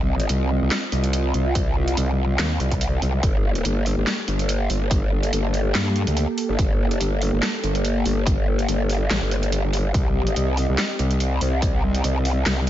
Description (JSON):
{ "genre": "heavy wobble dubstep", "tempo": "143 BPM", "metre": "4/4", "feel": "swing 55% on 16ths, half-time", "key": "G minor", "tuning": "A4 = 440 Hz", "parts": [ { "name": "lush unison pad", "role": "sustained chords", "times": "0.0-12.7 s", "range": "Bb3 to Eb5", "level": "-28 LUFS", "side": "equal", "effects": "chorus, sidechain pumping" }, { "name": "growl bass", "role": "bass", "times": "0.0-12.7 s", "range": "G1 to G2", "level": "-21 LUFS", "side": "equal", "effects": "chorus, overdrive" }, { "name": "dubstep drum kit", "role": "drums", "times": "0.2-12.7 s", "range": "handclaps, hi-hat, snare drum", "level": "-26 LUFS", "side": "equal", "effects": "studio reverb" }, { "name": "electronic kick drum", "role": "drums", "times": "1.6-11.7 s", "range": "none", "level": "-22 LUFS", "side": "equal", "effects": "studio reverb" } ], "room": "digital ambience", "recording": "nothing above 7.5 kHz", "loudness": "-19 LUFS", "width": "side -12 dB against mid", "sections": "0.0-12.7 A section", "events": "none", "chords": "0.0 Cm; 3.2 Gmadd9; 9.9 Cm", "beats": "0.29 0.71 1.13 | 1.55 1.97 2.39 2.81 | 3.23 3.65 4.07 4.49 | 4.91 5.33 5.75 6.17 | 6.59 7.01 7.43 7.85 | 8.27 8.69 9.11 9.52 | 9.94 10.36 10.78 11.20 | 11.62 12.04 12.46" }